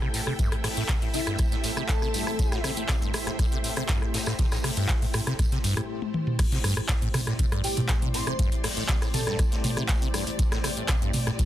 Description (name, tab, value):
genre	acid house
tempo	120 BPM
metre	4/4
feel	straight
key	A minor pentatonic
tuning	A4 = 441 Hz
part	string machine, full ensemble	sustained chords	0.0-11.5 s	A3 to C5	-35 LUFS	equal	ensemble chorus, sidechain pumping
part	liquid acid bass	riff	0.0-11.5 s	G2 to C3	-31 LUFS	equal	phaser
part	booming analog drum machine	drums	0.0-11.5 s	crash cymbal, handclaps, hi-hat, rim click, toms	-30 LUFS	equal	none
part	warm symphonic string section	texture	0.0-11.5 s	E4 to G5	-38 LUFS	right 1 dB	sidechain pumping
part	vintage drum kit	drums	0.1-11.5 s	hi-hat, snare drum, tambourine	-38 LUFS	left 1 dB	high-pass filter on hats, high-pass filter on snare, high-pass filter on perc, high-pass filter on room
part	electronic kick drum	drums	0.4-11.5 s	none	-26 LUFS	equal	none
part	airy dreamy lead	melody	1.1-2.6, 7.6-9.3 s	E4 to C5	-34 LUFS	left 1 dB	chorus, ping-pong delay
room	little or no reverb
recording	dense, heavily limited modern master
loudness	-24 LUFS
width	side -12 dB against mid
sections	0.0-6.4 A section; 6.4-11.5 B section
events	filter sweep on acid bass 0.0-6.4; break 5.9-6.4; drum fill 6.0-6.4; drop 6.4-11.5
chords	0.0 Am7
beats	| 0.39 0.89 1.39 1.89 | 2.39 2.89 3.39 3.89 | 4.39 4.89 5.39 5.89 | 6.39 6.89 7.39 7.89 | 8.39 8.89 9.39 9.89 | 10.39 10.89 11.39